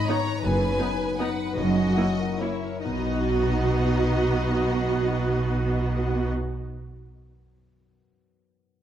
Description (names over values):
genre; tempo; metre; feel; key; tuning
classical; 126-177 BPM; 3/4; rubato; B major; A4 = 443 Hz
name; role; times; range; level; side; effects
clear studio violin section; melody; 0.0-6.3 s; C#5 to A#5; -35 LUFS; left 3 dB; none
warm studio violin section; second line; 0.0-6.3 s; D#4 to C#5; -31 LUFS; left 1 dB; none
concert harp; arpeggios; 0.0-6.9 s; F#2 to F#5; -32 LUFS; left 8 dB; none
rich studio viola section; accompaniment; 0.1-6.3 s; A#3 to F#4; -27 LUFS; right 2 dB; none
rich studio cello section; bass; 0.4-6.3 s; F#2 to B2; -28 LUFS; right 2 dB; none
rich studio double bass section; bass; 0.4-6.3 s; F#1 to B1; -30 LUFS; right 2 dB; none
room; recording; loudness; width
light reverb; close, detailed microphones; -22 LUFS; side -10 dB against mid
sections
0.0-2.9 A section; 2.9-5.5 B section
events
slowing down 0.0-2.9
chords
0.4 B/F#; 1.6 F#7; 2.9 B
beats
0.08 | 0.44 0.80 1.19 | 1.56 1.96 2.40 | 2.85 3.30 3.76 | 4.20 4.64 5.09